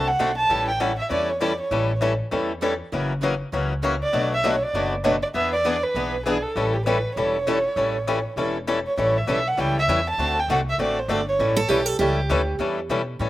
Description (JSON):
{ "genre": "acoustic string swing (jazz manouche)", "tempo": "198 BPM", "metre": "4/4", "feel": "swing 59% on 8ths", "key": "A mixolydian", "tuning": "A4 = 444 Hz", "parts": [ { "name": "dark violin", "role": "melody", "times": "0.0-2.0, 4.0-11.7 s", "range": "G4 to A5", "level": "-23 LUFS", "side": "right 1 dB", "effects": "none" }, { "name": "picked steel-string acoustic guitar", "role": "accompaniment", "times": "0.0-13.3 s", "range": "B2 to B4", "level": "-30 LUFS", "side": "right 4 dB", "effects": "none" }, { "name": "picked swing-style acoustic guitar", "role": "accompaniment", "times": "0.0-13.3 s", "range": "B2 to A4", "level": "-25 LUFS", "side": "left 4 dB", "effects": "slapback echo" }, { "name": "upright bass", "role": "bass", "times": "0.0-13.3 s", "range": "E1 to B2", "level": "-28 LUFS", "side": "equal", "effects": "none" }, { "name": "picked steel-string acoustic guitar", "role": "second line", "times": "11.6-12.6 s", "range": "G4 to A4", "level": "-24 LUFS", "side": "right 3 dB", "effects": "none" } ], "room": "little or no reverb", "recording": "recorded outdoors, with no room sound", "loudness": "-20 LUFS", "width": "side -15 dB against mid", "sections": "0.0-9.0 A section; 9.0-13.3 A section", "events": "none", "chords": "0.0 D7; 0.5 A7; 2.9 F#7; 4.1 Bm7; 5.3 E7; 6.6 A7; 10.2 D7; 11.4 A7" }